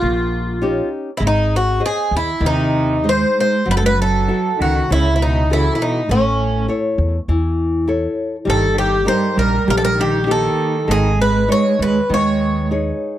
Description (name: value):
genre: fado-style ballad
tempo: 100 BPM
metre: 4/4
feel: rubato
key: unclear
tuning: A4 = 440 Hz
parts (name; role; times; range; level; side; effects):
- picked twelve-string acoustic guitar; melody; 0.0-12.7 s; C#4 to C#5; -18 LUFS; equal; none
- nylon-string guitar; accompaniment; 0.0-13.2 s; C#3 to E5; -22 LUFS; left 2 dB; none
- upright bass; bass; 0.0-12.9 s; F#1 to E2; -20 LUFS; equal; none
- dark cello; second line; 2.4-12.7 s; A2 to G#3; -20 LUFS; right 4 dB; none
room: light reverb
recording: dry, close 1970s-style studio recording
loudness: -15 LUFS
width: side -12 dB against mid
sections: 0.0-13.2 A section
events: none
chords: 0.0 D#7; 1.2 G#; 3.7 F#m7; 6.1 A; 8.5 D#/G; 10.9 G#sus4